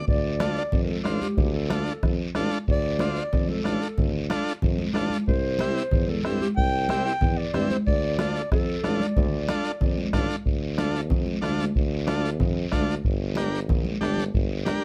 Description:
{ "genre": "latin, cumbia", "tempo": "185 BPM", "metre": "4/4", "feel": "straight", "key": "D minor", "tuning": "A4 = 440 Hz", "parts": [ { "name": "combo organ", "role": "accompaniment", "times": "0.0-14.8 s", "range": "C4 to C5", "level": "-31 LUFS", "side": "equal", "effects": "none" }, { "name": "breathy clarinet", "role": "second line", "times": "0.1-10.1 s", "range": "G4 to G5", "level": "-32 LUFS", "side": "equal", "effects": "none" }, { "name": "clear tuba", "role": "bass", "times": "0.1-14.7 s", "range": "G1 to G2", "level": "-31 LUFS", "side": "equal", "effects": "none" }, { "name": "bombo", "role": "percussion", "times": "0.1-14.8 s", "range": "none", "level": "-28 LUFS", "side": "equal", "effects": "none" }, { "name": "congas", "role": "percussion", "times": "0.1-14.8 s", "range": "none", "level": "-32 LUFS", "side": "equal", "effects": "none" }, { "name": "guiro", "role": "percussion", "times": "0.1-14.8 s", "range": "none", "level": "-44 LUFS", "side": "equal", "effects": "none" } ], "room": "little or no reverb", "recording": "close, detailed microphones", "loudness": "-25 LUFS", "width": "mono", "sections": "0.1-10.5 A section; 10.5-14.8 B section", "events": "clarinet solo 0.1-10.5", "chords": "0.1 Dm; 5.3 C; 7.9 Dm; 13.1 Gm", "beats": "| 0.08 0.41 0.73 1.06 | 1.38 1.71 2.03 2.36 | 2.68 3.01 3.33 3.66 | 3.98 4.31 4.63 4.96 | 5.28 5.60 5.93 6.25 | 6.58 6.90 7.22 7.55 | 7.87 8.20 8.52 8.84 | 9.17 9.49 9.81 10.14 | 10.46 10.79 11.11 11.43 | 11.76 12.08 12.40 12.73 | 13.05 13.38 13.70 14.02 | 14.35 14.67" }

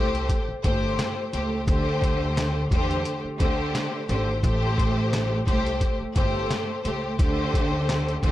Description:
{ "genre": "hip hop, boom-bap hip-hop", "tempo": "87 BPM", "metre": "4/4", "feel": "swing 54% on 16ths", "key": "A minor", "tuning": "A4 = 440 Hz", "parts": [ { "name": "warm symphonic string section", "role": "accompaniment", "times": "0.0-8.3 s", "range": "A2 to C5", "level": "-26 LUFS", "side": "equal", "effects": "high-pass filter, low-pass filter" }, { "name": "upright bass", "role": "bass", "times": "0.0-8.3 s", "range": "G1 to E2", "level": "-28 LUFS", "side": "equal", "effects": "none" }, { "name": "trip hop sampler-style drum kit", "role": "drums", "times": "0.1-8.3 s", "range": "handclaps, hi-hat, kick drum, snare drum", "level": "-26 LUFS", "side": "equal", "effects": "none" } ], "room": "small room ambience", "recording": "dry, gritty hardware recording", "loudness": "-22 LUFS", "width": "side -14 dB against mid", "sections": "0.0-8.3 A section", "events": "none", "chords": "0.0 Am7; 1.7 D7sus4; 4.4 Am7; 7.2 D7sus4", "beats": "0.29 0.98 | 1.68 2.36 3.05 3.74 | 4.43 5.12 5.81 6.50 | 7.19 7.88" }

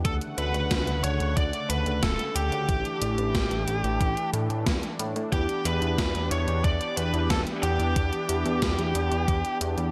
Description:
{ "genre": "synthwave", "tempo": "91 BPM", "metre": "4/4", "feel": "straight", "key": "E dorian", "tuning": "A4 = 440 Hz", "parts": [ { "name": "warm analog pad", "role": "sustained chords", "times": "0.0-9.9 s", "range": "C#3 to F#5", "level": "-35 LUFS", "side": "equal", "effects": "chorus, sidechain pumping" }, { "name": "chorused synth bass", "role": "bass", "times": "0.0-9.9 s", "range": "D1 to A2", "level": "-30 LUFS", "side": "equal", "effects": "none" }, { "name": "gated 80s digital drum machine", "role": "drums", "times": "0.0-9.9 s", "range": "hi-hat, snare drum", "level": "-34 LUFS", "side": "equal", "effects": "gated reverb, gated reverb snare, overdrive" }, { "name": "bluesy overdriven lead guitar", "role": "melody", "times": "0.1-9.6 s", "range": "G4 to D5", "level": "-32 LUFS", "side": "equal", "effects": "distortion, digital delay" }, { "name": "electronic kick drum", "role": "drums", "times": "0.1-9.4 s", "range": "none", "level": "-30 LUFS", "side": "equal", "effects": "overdrive" } ], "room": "light reverb, digital ambience", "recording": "none", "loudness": "-26 LUFS", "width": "mono", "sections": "0.0-9.9 A section", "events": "none", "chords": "0.0 Dmaj7; 2.7 Asus4; 5.3 Em7", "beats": "| 0.05 0.71 1.37 2.03 | 2.69 3.35 4.00 4.67 | 5.32 5.98 6.64 7.30 | 7.96 8.62 9.28" }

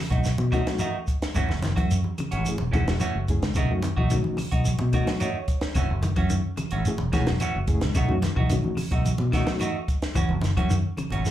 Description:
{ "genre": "afrobeat", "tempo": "109 BPM", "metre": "4/4", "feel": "straight", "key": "F# dorian", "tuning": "A4 = 440 Hz", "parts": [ { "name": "semi-hollow electric guitar", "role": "arpeggios", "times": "0.0-11.2 s", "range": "C#3 to F#3", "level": "-32 LUFS", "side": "left 6 dB", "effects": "slapback echo" }, { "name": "semi-hollow electric guitar", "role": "stabs", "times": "0.1-11.3 s", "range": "D#3 to F#4", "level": "-31 LUFS", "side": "right 3 dB", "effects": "slapback echo" }, { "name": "fingered electric bass", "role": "bass", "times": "0.1-11.2 s", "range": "E1 to B2", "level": "-25 LUFS", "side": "equal", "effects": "none" }, { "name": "compact cocktail drum kit", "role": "drums", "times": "0.1-11.3 s", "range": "hi-hat, kick drum, snare drum", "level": "-27 LUFS", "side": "equal", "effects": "none" }, { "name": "congas", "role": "percussion", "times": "0.1-11.3 s", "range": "none", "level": "-32 LUFS", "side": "right 2 dB", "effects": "slapback echo" }, { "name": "shekere", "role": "percussion", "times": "0.2-11.3 s", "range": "none", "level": "-31 LUFS", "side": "equal", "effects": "slapback echo" }, { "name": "reed electric piano", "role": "accompaniment", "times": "0.5-11.3 s", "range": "A3 to C#5", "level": "-31 LUFS", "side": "left 3 dB", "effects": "fast tremolo, slapback echo" }, { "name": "claves", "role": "percussion", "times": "0.5-11.1 s", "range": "none", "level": "-43 LUFS", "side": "left 3 dB", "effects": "none" } ], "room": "little or no reverb", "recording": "live gig heard through the venue's PA, club reverb", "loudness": "-22 LUFS", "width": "side -12 dB against mid", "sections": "0.0-11.3 A section", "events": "reed electric piano fill 4.9-5.8", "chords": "0.0 B7; 1.4 F#m7; 3.6 B7; 5.8 F#m7; 8.0 B7; 10.2 F#m7", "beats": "0.25 0.80 | 1.35 1.90 2.45 3.00 | 3.56 4.11 4.66 5.21 | 5.76 6.31 6.86 7.41 | 7.96 8.51 9.05 9.60 | 10.15 10.70 11.25" }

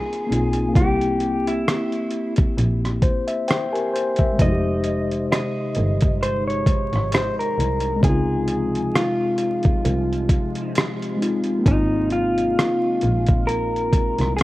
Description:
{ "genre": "lo-fi hip hop", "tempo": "66 BPM", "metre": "4/4", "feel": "swing 55% on 16ths", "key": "Ab major", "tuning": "A4 = 438 Hz", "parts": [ { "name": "electric guitar through a small old amp", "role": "melody", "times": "0.0-14.4 s", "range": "Eb4 to Eb5", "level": "-25 LUFS", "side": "equal", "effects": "low-pass filter" }, { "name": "mellow tine electric piano", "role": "accompaniment", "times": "0.0-14.4 s", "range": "C3 to Ab5", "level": "-24 LUFS", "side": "left 2 dB", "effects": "medium stereo tremolo, cassette tape, low-pass filter" }, { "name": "dusty soul sampler-style drum kit", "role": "drums", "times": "0.1-14.4 s", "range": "hi-hat, kick drum, rim click", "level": "-21 LUFS", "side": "equal", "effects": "overdrive" }, { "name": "warm double bass", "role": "bass", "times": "0.3-14.4 s", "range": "F1 to Db2", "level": "-24 LUFS", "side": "equal", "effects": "none" }, { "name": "deep dark ambient pad", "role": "sustained chords", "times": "5.8-14.4 s", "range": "C3 to F4", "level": "-31 LUFS", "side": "right 1 dB", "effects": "chorus, built-in reverb, phaser, low-pass filter" } ], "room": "light reverb", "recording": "worn, warbling old tape, cassette tape, vinyl crackle, warbly pitch drift", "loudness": "-18 LUFS", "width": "side -17 dB against mid", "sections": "0.0-14.4 A section", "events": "tine electric piano fill 2.6-4.4", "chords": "0.0 Ab6; 0.8 C7; 4.4 Fm7; 8.0 Dbmaj7; 11.7 Ab6", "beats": "| 0.75 1.66 2.57 3.48 | 4.39 5.30 6.21 7.12 | 8.02 8.93 9.84 10.75 | 11.66 12.57 13.48 14.39" }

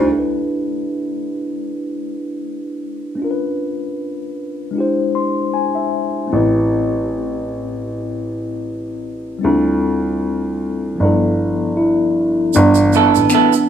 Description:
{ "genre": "R&B, neo-soul", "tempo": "77 BPM", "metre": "4/4", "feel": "swing 56% on 16ths", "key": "G major", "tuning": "A4 = 440 Hz", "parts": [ { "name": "mellow tine electric piano", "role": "accompaniment", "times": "0.0-13.7 s", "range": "E3 to B#5", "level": "-18 LUFS", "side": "left 1 dB", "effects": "slow stereo tremolo" }, { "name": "warm baby grand piano", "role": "bass", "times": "0.0-0.1, 6.3-13.2 s", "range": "G1 to D2", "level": "-18 LUFS", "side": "right 1 dB", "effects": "none" }, { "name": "tube shaker and finger snaps", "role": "percussion", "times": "12.5-13.7 s", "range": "none", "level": "-26 LUFS", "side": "right 4 dB", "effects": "none" }, { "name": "semi-hollow electric guitar", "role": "second line", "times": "12.9-13.5 s", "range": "B3 to A4", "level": "-13 LUFS", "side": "right 10 dB", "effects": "spring reverb" } ], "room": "moderate large studio reverb, RT60 0.9 s", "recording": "band playing live in one room", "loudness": "-16 LUFS", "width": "side -9 dB against mid", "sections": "0.1-12.5 A section; 12.5-13.7 B section", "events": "tine electric piano fill 4.7-6.3; tine electric piano solo 12.5-13.7", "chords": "0.1 G69; 3.2 Bm7b5; 4.7 E7alt; 6.3 Am9; 9.4 Dm11; 11.0 G13; 12.5 G69", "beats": "| 0.07 0.85 1.62 2.40 | 3.18 3.96 4.74 5.52 | 6.30 7.08 7.86 8.64 | 9.42 10.20 10.98 11.76 | 12.53 13.31" }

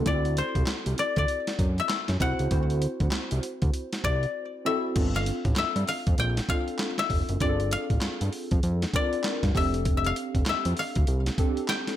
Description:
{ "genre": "R&B, new jack swing", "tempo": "98 BPM", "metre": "4/4", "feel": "swing 62% on 16ths", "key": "unclear", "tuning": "A4 = 441 Hz", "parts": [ { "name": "warm analog keys", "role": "accompaniment", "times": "0.0-12.0 s", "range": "C4 to C5", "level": "-32 LUFS", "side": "right 1 dB", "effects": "chorus, tremolo" }, { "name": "fat analog bass", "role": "bass", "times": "0.0-11.3 s", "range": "F1 to G2", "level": "-27 LUFS", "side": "equal", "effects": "none" }, { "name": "koto", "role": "melody", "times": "0.1-12.0 s", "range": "C5 to G5", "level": "-29 LUFS", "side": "left 4 dB", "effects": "none" }, { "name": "dusty soul sampler-style drum kit", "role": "drums", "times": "0.1-12.0 s", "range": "crash cymbal, handclaps, hi-hat, kick drum, snare drum", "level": "-28 LUFS", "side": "equal", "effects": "gated reverb" } ], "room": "little or no reverb", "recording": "none", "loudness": "-24 LUFS", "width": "side -12 dB against mid", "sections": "0.0-5.0 A section; 5.0-12.0 B section", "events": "silent gap 4.3-5.0", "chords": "0.1 D7; 5.0 Bbmaj7; 9.6 F6", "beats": "| 0.06 0.67 1.29 1.90 | 2.51 3.12 3.73 4.35 | 4.96 5.57 6.18 6.80 | 7.41 8.02 8.63 9.24 | 9.86 10.47 11.08 11.69" }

